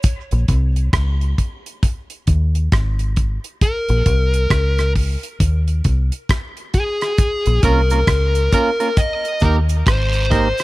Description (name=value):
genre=dub reggae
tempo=67 BPM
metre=4/4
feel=swing 62% on 16ths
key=Bb dorian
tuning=A4 = 437 Hz
part: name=damped 70s drum kit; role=drums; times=0.0-10.6 s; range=hi-hat, kick drum, rim click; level=-18 LUFS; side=equal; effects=none
part: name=cabasa and guiro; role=percussion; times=0.0-0.3, 7.2-10.6 s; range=none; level=-32 LUFS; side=right 5 dB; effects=dub echo
part: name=deep dub fingered electric bass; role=bass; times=0.3-10.5 s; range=Ab1 to Eb2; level=-16 LUFS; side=equal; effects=none
part: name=fuzz lead guitar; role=melody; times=3.6-10.6 s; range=Ab4 to Eb5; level=-21 LUFS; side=left 1 dB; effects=distortion, dub echo
part: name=clean electric guitar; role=accompaniment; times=7.6-10.5 s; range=Bb3 to Bb4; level=-22 LUFS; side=right 4 dB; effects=dub echo
room=small room ambience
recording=none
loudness=-15 LUFS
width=side -19 dB against mid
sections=0.0-7.2 A section; 7.2-10.6 A section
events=break 0.0-7.2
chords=0.0 Bbm; 1.8 Ab5; 3.6 Bbm; 5.4 Cm; 7.2 Bbm; 9.0 Eb